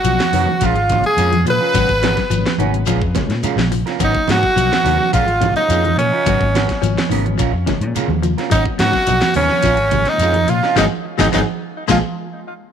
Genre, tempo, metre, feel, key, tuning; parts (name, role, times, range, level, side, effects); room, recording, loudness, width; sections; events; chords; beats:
afrobeat; 106 BPM; 4/4; straight; G# dorian; A4 = 444 Hz
raspy tenor saxophone; melody; 0.0-12.0 s; C#4 to B4; -18 LUFS; equal; tape echo
bright trumpet; second line; 0.0-12.0 s; C#4 to B4; -24 LUFS; right 11 dB
semi-hollow electric guitar; arpeggios; 0.0-12.0 s; C#3 to A#3; -24 LUFS; left 14 dB; lush chorus
fingered electric bass; bass; 0.0-12.0 s; G#1 to A#2; -20 LUFS; left 1 dB
drum and bass drum kit; drums; 0.0-12.0 s; hi-hat, kick drum, snare drum; -23 LUFS; left 1 dB
shekere; percussion; 0.0-12.0 s; -28 LUFS; left 8 dB
reed electric piano; accompaniment; 0.1-12.0 s; E#3 to C#4; -28 LUFS; left 14 dB; fast tremolo
electric guitar through a small old amp; stabs; 0.1-12.0 s; G#3 to A#4; -25 LUFS; right 12 dB
congas; percussion; 0.1-12.0 s; -24 LUFS; right 10 dB
light reverb, small room ambience; 1960s-style stereo with parts hard left and right; -14 LUFS; side -8 dB against mid
0.0-12.7 A section
band accent 10.8-12.7; drum fill 11.9-12.7
0.0 G#m11 (rootless); 0.6 A#m7; 1.7 G#m11; 2.9 A#m7; 4.0 G#m11; 5.1 A#m7; 6.3 G#m11; 7.4 A#m7; 8.5 G#m11; 9.6 A#m7; 10.8 G#m7; 11.9 A#7(no3)
0.05 0.61 1.18 | 1.74 2.31 2.87 3.44 | 4.00 4.57 5.13 5.70 | 6.26 6.82 7.39 7.95 | 8.51 9.08 9.64 10.20 | 10.77 11.33 11.89